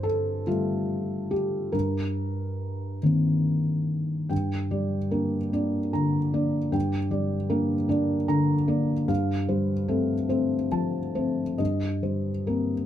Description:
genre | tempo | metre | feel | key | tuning
neoclassical minimalist piano | 45-52 BPM (dotted quarters) | 6/8 | rubato | G minor | A4 = 440 Hz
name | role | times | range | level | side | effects
felt-muted upright piano | solo | 0.0-12.9 s | G2 to Bb5 | -24 LUFS | left 1 dB | none
room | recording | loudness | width
little or no reverb | close, detailed microphones | -24 LUFS | side -11 dB against mid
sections
0.0-4.3 A section; 4.3-12.9 B section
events
none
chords
0.0 Fadd9/G; 1.7 Eb6/G; 4.3 Gm; 9.1 Fadd9/G; 11.6 Eb6/G

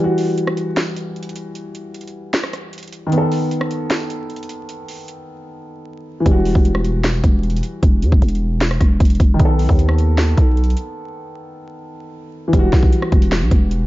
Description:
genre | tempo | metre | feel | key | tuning
hip hop, trap | 153 BPM | 4/4 | half-time | E harmonic minor | A4 = 441 Hz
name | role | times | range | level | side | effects
dark concert grand piano | accompaniment | 0.0-13.9 s | D#3 to A4 | -22 LUFS | equal | none
trap drum kit | drums | 0.2-13.8 s | hi-hat, kick drum, rim click, snare drum | -16 LUFS | equal | none
growling 808-style bass | bass | 6.3-13.9 s | E1 to E2 | -17 LUFS | equal | none
room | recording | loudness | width
digital ambience | dark, warm production, vinyl crackle, nothing above 7.6 kHz | -14 LUFS | side -17 dB against mid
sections
0.0-12.5 A section; 12.5-13.9 B section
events
break 0.0-6.3, 11.0-12.5; drums muted 5.5-6.3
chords
0.0 Emadd9; 3.1 B7; 6.3 Emadd9; 9.4 B7; 12.5 Emadd9

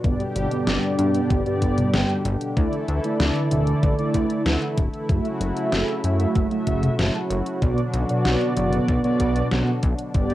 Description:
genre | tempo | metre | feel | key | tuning
synthwave | 95 BPM | 4/4 | straight | B minor | A4 = 437 Hz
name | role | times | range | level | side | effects
brassy analog pad | sustained chords | 0.0-10.3 s | B2 to A4 | -27 LUFS | left 1 dB | chorus, tremolo, sidechain pumping, cassette tape
mellow synth brass | stabs | 0.0-10.3 s | G2 to A5 | -24 LUFS | right 1 dB | chorus, cassette tape, analog delay
chorused synth bass | bass | 0.0-10.3 s | D1 to G2 | -24 LUFS | equal | none
electronic kick drum | drums | 0.0-10.3 s | none | -23 LUFS | equal | overdrive, cassette tape
pop drum kit | drums | 0.0-10.3 s | hi-hat, snare drum, toms | -26 LUFS | equal | overdrive, cassette tape
room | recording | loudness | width
moderate small room ambience, RT60 0.5 s | home recording on cassette | -20 LUFS | side -14 dB against mid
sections
0.0-10.3 A section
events
none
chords
0.0 G; 2.6 Dsus2; 5.1 F#m7; 7.6 Bm

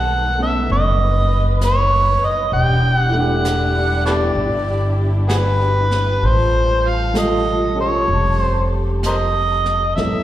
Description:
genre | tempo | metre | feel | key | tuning
jazz ballad | 65 BPM | 4/4 | swing 68% on 8ths | unclear | A4 = 441 Hz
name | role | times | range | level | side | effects
overdriven harmonica | melody | 0.0-10.2 s | F#4 to G5 | -19 LUFS | right 1 dB | plate reverb, slapback echo
warm baby grand piano | accompaniment | 0.0-10.2 s | D#3 to A4 | -25 LUFS | right 1 dB | plate reverb, slapback echo
dark studio string section | sustained chords | 0.0-10.0 s | D#3 to B4 | -25 LUFS | left 2 dB | plate reverb
upright bass | bass | 0.0-10.2 s | E1 to D2 | -18 LUFS | equal | none
jazz brush drum kit | drums | 0.7-10.2 s | brushed snare drum, hi-hat, snare drum | -31 LUFS | equal | slapback echo
room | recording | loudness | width
moderate club reverb, RT60 0.7 s | live gig heard through the venue's PA, recital hall reverb | -15 LUFS | side -13 dB against mid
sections
0.0-10.0 A section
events
none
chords
0.0 B7b13; 2.5 Em9; 6.2 Aaug7

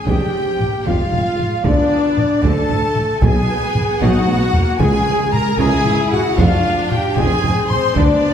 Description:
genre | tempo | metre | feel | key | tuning
cinematic, epic orchestral film score | 76 BPM (dotted quarters) | 6/8 | straight | unclear | A4 = 440 Hz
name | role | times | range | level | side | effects
warm symphonic violin section | melody | 0.0-8.3 s | D5 to C6 | -29 LUFS | left 3 dB | none
mellow hollow silver concert flute | second line | 0.0-8.3 s | D5 to C6 | -27 LUFS | left 2 dB | none
warm symphonic violin section | second line | 0.0-8.3 s | D5 to C6 | -26 LUFS | left 2 dB | none
rich symphonic viola section | accompaniment | 0.0-8.3 s | Ab3 to E4 | -27 LUFS | right 1 dB | none
warm French horn section | sustained chords | 0.0-8.3 s | D4 to C5 | -19 LUFS | left 2 dB | none
dark trumpet section | stabs | 0.0-8.3 s | D4 to C5 | -26 LUFS | right 2 dB | none
dark symphonic double bass section | bass | 0.1-8.0 s | F1 to D2 | -24 LUFS | right 2 dB | none
mellow tuba | bass | 0.1-8.1 s | F1 to D2 | -24 LUFS | right 2 dB | none
warm symphonic cello section | bass | 0.1-8.0 s | F2 to D3 | -24 LUFS | right 2 dB | none
taiko ensemble | drums | 0.1-8.3 s | none | -20 LUFS | equal | none
timpani | percussion | 4.8-5.6 s | C#3 | -25 LUFS | equal | none
room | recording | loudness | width
wet recital hall reverb, RT60 1.6 s | heard from further back in the room | -14 LUFS | side -8 dB against mid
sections
0.0-8.3 A section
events
drum fill 4.0-4.8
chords
0.1 Fm; 1.7 D5; 3.2 B5; 4.8 C#m; 6.4 Fm

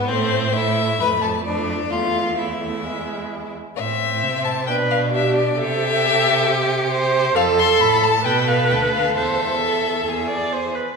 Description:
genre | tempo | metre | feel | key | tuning
quick classical-period movement for string quartet | 132 BPM | 4/4 | straight | A minor | A4 = 441 Hz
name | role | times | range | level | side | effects
warm violin | melody | 0.0-10.7 s | C5 to C6 | -22 LUFS | left 7 dB | none
rich violin | second line | 0.0-10.8 s | B3 to B4 | -24 LUFS | left 2 dB | none
rich cello | bass | 0.0-10.8 s | D2 to C3 | -25 LUFS | right 4 dB | none
warm viola | accompaniment | 0.1-11.0 s | G#3 to D5 | -22 LUFS | right 4 dB | none
room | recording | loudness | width
wet recital hall reverb, RT60 1.7 s | recorded in a church or concert hall | -17 LUFS | side -4 dB against mid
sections
0.0-3.8 A section; 3.8-11.0 B section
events
none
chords
0.1 Am; 1.0 Dm/F; 1.9 A5/E; 2.8 E; 3.8 Am; 4.7 G/B; 5.6 C; 7.4 F; 8.2 Dm6; 9.2 Am/E; 10.1 E

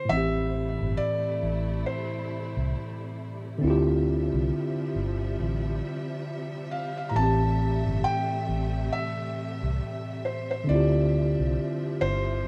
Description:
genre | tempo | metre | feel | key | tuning
lo-fi hip hop | 68 BPM | 4/4 | swing 58% on 16ths | unclear | A4 = 440 Hz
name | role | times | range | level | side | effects
felt-muted upright piano | melody | 0.0-12.5 s | C5 to Bb5 | -33 LUFS | equal | tape echo
mellow tine electric piano | accompaniment | 0.0-12.5 s | A2 to G4 | -30 LUFS | equal | none
warm studio string section | sustained chords | 0.1-12.5 s | C3 to E5 | -41 LUFS | equal | none
vintage muted fingered electric bass | bass | 0.1-12.4 s | G1 to D2 | -31 LUFS | equal | none
room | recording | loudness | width
small room ambience | rough home demo mix | -28 LUFS | mono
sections
0.1-12.5 A section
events
none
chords
0.1 Am7; 3.6 Dm11; 7.2 Am7; 10.7 Dm11

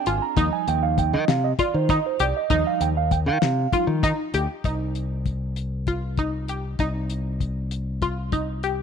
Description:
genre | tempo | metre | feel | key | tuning
progressive instrumental, band music in an uneven meter | 196 BPM (eighths) | 7/8 | straight | unclear | A4 = 440 Hz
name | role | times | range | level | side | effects
mellow tine electric piano | accompaniment | 0.0-4.0 s | F3 to Bb5 | -24 LUFS | right 13 dB | slow stereo tremolo
analog pluck | arpeggios | 0.1-8.8 s | Eb4 to G4 | -26 LUFS | left 2 dB | chorus, phaser
modern bright fingered electric bass | bass | 0.1-8.8 s | Ab1 to Eb3 | -25 LUFS | left 1 dB | none
cloth-damped thuddy drum kit | drums | 0.1-8.8 s | hi-hat, kick drum, snare drum | -25 LUFS | left 4 dB | none
room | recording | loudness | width
light reverb, small room ambience | 1960s-style stereo | -21 LUFS | side -7 dB against mid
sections
0.0-4.6 A section; 4.6-8.8 B section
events
tine electric piano solo 0.0-4.6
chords
0.4 Ebadd9; 4.6 Cm

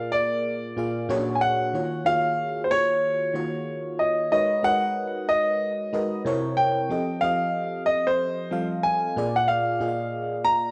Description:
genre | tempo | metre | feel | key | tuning
R&B | 93 BPM | 4/4 | swing 61% on 16ths | Eb minor | A4 = 440 Hz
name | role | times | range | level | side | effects
clear concert grand piano | melody | 0.0-10.7 s | C5 to Bb5 | -26 LUFS | equal | cassette tape
FM electric piano | accompaniment | 0.0-10.7 s | Bb2 to F5 | -30 LUFS | equal | chorus, cassette tape
room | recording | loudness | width
moderate spring reverb, RT60 2.0 s, small room ambience | home recording on cassette | -25 LUFS | mono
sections
0.0-10.7 A section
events
none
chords
0.0 Bb7; 1.1 Bb7alt; 1.7 Ebm9; 4.3 Abm11; 6.2 C7b9; 6.9 F7; 9.1 Bb7

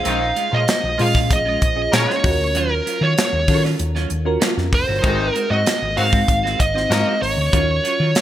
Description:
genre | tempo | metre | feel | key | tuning
polished 1980s jazz-funk pop | 96 BPM | 4/4 | straight | Eb dorian | A4 = 440 Hz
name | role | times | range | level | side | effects
high-gain lead guitar | melody | 0.0-8.2 s | Bb4 to F5 | -20 LUFS | right 2 dB | distortion
clear horn section | second line | 0.0-7.2 s | C3 to Bb4 | -26 LUFS | left 3 dB | digital delay
bell-like FM electric piano | accompaniment | 0.0-8.2 s | C4 to Eb5 | -27 LUFS | left 2 dB | phaser, wide subtle chorus
clean electric guitar | riff | 0.0-8.2 s | Gb3 to Gb4 | -28 LUFS | right 6 dB | wide subtle chorus
hollow-body short-scale fingered electric bass | bass | 0.0-8.1 s | F1 to Eb3 | -22 LUFS | equal | none
tight funk drum kit | drums | 0.1-8.2 s | hi-hat, kick drum, snare drum | -20 LUFS | equal | gated reverb
room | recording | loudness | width
light reverb, studio ambience | bright 1980s-style digital production | -16 LUFS | side -12 dB against mid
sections
0.0-8.2 A section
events
none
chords
0.0 Bbm7; 2.2 Ebm9; 5.0 Ab7; 7.5 Ebm9

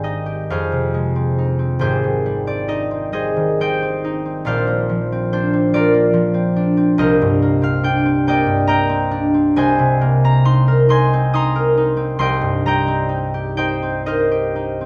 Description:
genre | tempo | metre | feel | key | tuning
classical, solo harp piece | 46 BPM (dotted quarters) | 6/8 | uneven beats, rubato | unclear | A4 = 440 Hz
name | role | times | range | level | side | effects
concert harp | solo | 0.0-14.9 s | Ab1 to Eb6 | -17 LUFS | equal | none
room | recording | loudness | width
moderate scoring stage reverb, RT60 1.5 s | none | -17 LUFS | mono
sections
0.0-14.9 A section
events
none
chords
0.5 Fm7; 1.8 Abmaj7; 4.5 Bbadd9; 7.0 Cm9; 9.6 Abadd9/C; 12.2 Cm7

